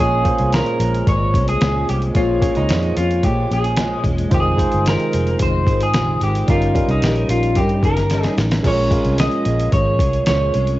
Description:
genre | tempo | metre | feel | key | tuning
indie pop, bedroom pop | 111 BPM | 4/4 | straight | Bb dorian | A4 = 440 Hz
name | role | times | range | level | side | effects
electric guitar through a small old amp | melody | 0.0-10.8 s | Eb4 to Eb5 | -21 LUFS | equal | lush chorus, analog delay
barky tine electric piano | accompaniment | 0.0-10.8 s | G3 to Db5 | -23 LUFS | right 3 dB | overdrive, cassette tape
picked steel-string acoustic guitar | accompaniment | 0.0-10.8 s | F2 to Bb4 | -26 LUFS | left 2 dB | ensemble chorus, warbly pitch drift, cassette tape
vintage muted fingered electric bass | bass | 0.0-10.8 s | E1 to Bb2 | -20 LUFS | equal | transformer saturation
dusty soul sampler-style drum kit | drums | 0.2-10.8 s | crash cymbal, hi-hat, kick drum, snare drum | -20 LUFS | equal | cassette tape
room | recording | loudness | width
digital ambience | home recording on cassette, nothing above 7.8 kHz | -15 LUFS | side -16 dB against mid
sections
0.0-10.8 A section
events
drum fill 8.1-8.6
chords
0.0 Bbm7; 4.3 Fm7; 6.5 Eb7/G; 8.6 Bbm7

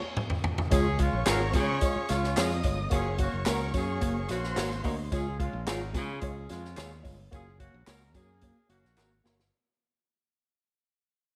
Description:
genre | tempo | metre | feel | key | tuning
uptempo 1960s-style soul | 109 BPM | 4/4 | straight | Db major | A4 = 440 Hz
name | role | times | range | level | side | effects
swinging big-band drum kit | drums | 0.2-9.5 s | hi-hat, kick drum, snare drum, toms | -33 LUFS | equal | none
warm horn section | second line | 0.7-9.2 s | Ab3 to Bb4 | -38 LUFS | equal | none
warm studio violin section | second line | 0.7-5.1 s | C5 to Eb6 | -40 LUFS | equal | none
tine electric piano | accompaniment | 0.7-9.4 s | Ab3 to Eb5 | -37 LUFS | equal | phaser
modern bright fingered electric bass | bass | 0.7-9.5 s | Gb1 to Db3 | -35 LUFS | equal | transformer saturation
tambourine and handclaps | percussion | 0.7-9.4 s | none | -43 LUFS | equal | none
electric guitar through a small old amp | stabs | 1.3-9.3 s | F4 to Db5 | -40 LUFS | equal | none
room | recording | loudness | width
light reverb, small room ambience | none | -29 LUFS | mono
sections
0.7-9.5 A section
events
drum fill 0.0-0.7, 9.0-9.5; band accent 0.0-0.7; fade-out 0.7-9.5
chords
0.0 N.C.; 0.7 Db; 2.9 Gb; 5.1 Db; 7.3 Gb

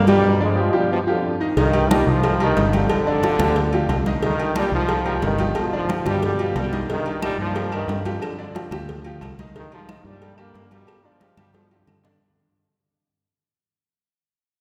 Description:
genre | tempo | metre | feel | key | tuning
latin, salsa | 180 BPM | 4/4 | straight | unclear | A4 = 441 Hz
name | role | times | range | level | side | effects
bright trombone section | melody | 0.0-12.0 s | F2 to A#3 | -25 LUFS | equal | none
fingered electric bass | bass | 0.0-12.2 s | G1 to G2 | -27 LUFS | equal | none
bright upright piano | accompaniment | 0.1-12.2 s | D3 to Eb5 | -28 LUFS | equal | none
agogo bells and timbales | percussion | 0.1-12.1 s | none | -34 LUFS | equal | none
congas | percussion | 0.1-12.1 s | none | -29 LUFS | equal | none
cowbell | percussion | 0.1-12.2 s | none | -33 LUFS | equal | none
claves | percussion | 7.2-12.0 s | none | -46 LUFS | equal | none
room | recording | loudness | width
wet concert hall reverb, RT60 2.5 s | recorded in a church or concert hall | -21 LUFS | mono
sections
0.0-1.6 A section; 1.6-12.2 A section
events
break 0.2-1.6; fade-out 1.6-12.2; drum fill 11.5-12.2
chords
0.2 G7; 1.6 Cm7; 2.9 G5; 4.2 Cm7; 5.6 G7; 6.9 F9sus4; 8.2 G5; 9.6 Gm7b13; 10.9 G7

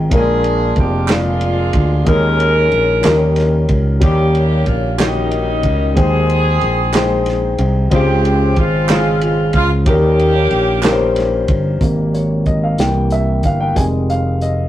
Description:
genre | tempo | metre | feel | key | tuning
slow gospel | 62 BPM (dotted quarters) | 6/8 | straight | Ab major | A4 = 440 Hz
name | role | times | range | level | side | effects
warm upright piano | accompaniment | 0.0-14.7 s | Ab2 to Ab5 | -18 LUFS | left 2 dB | none
fingered electric bass | bass | 0.0-14.7 s | F1 to Eb2 | -16 LUFS | equal | none
clear saxophone section | melody | 0.1-11.5 s | G3 to Bb4 | -18 LUFS | equal | none
warm soul drum kit | drums | 0.1-14.6 s | hi-hat, kick drum, ride cymbal, snare drum | -18 LUFS | right 1 dB | none
group handclap | percussion | 1.1-11.1 s | none | -23 LUFS | right 6 dB | none
room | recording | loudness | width
moderate studio reverb, RT60 0.6 s | rough rehearsal-room recording, tube saturation | -12 LUFS | side -13 dB against mid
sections
0.0-11.8 A section; 11.8-14.7 B section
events
upright piano solo 11.8-14.7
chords
0.1 Bb7; 2.1 Eb7sus4; 3.0 Eb7; 6.0 Abmaj7; 7.9 Dbmaj7; 9.9 Eb7; 11.8 Abmaj7; 12.8 C7; 13.8 Fm7

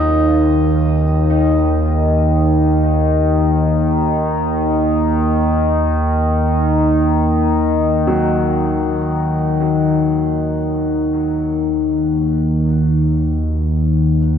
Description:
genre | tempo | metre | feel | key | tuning
dark ambient drone | free time | none | none | Eb minor | A4 = 439 Hz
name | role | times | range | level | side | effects
clear baby grand piano | arpeggios | 0.0-14.4 s | Gb2 to F4 | -25 LUFS | left 1 dB | dub echo, shimmer reverb
analog drone | drone | 0.0-14.4 s | Eb2 to Eb3 | -14 LUFS | equal | chorus
bronze singing bowl | texture | 0.0-14.4 s | none | barely audible | none | none
room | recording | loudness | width
moderate spring reverb, RT60 2.6 s | echo-heavy mix | -14 LUFS | side -8 dB against mid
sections
0.0-14.4 A section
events
none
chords
0.0 Eb5

